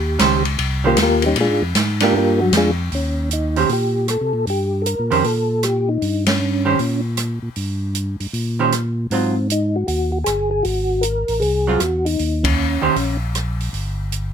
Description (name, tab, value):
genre	soul jazz organ trio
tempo	155 BPM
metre	4/4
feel	swing 65% on 8ths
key	Eb mixolydian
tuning	A4 = 440 Hz
part	percussive tonewheel organ	melody	0.0-13.2 s	Gb3 to Bb4	-20 LUFS	left 1 dB	slow rotary speaker, chorus vibrato
part	tonewheel organ	bass	0.0-14.3 s	G1 to C3	-22 LUFS	equal	slow rotary speaker
part	vintage hollow-body jazz guitar	accompaniment	0.2-13.0 s	Eb3 to C5	-19 LUFS	right 7 dB	none
part	open jazz drum kit	drums	0.2-14.2 s	hi-hat, kick drum, ride cymbal, rim click, snare drum	-23 LUFS	equal	none
room	little or no reverb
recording	close, detailed microphones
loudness	-17 LUFS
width	side -8 dB against mid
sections	0.0-2.9 A section; 2.9-14.3 B section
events	tonewheel organ solo 0.0-2.9; band accent 6.2, 12.4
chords	0.0 Eb13; 1.4 Bb6; 2.9 Eb; 9.1 Ab7; 12.2 Eb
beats	0.20 0.59 0.97 | 1.36 1.75 2.14 2.53 | 2.92 3.31 3.69 4.08 | 4.47 4.86 5.25 5.63 | 6.02 6.41 6.79 7.18 | 7.57 7.95 8.34 8.73 | 9.11 9.50 9.88 10.27 | 10.65 11.04 11.43 11.81 | 12.20 12.58 12.96 13.35 | 13.73 14.12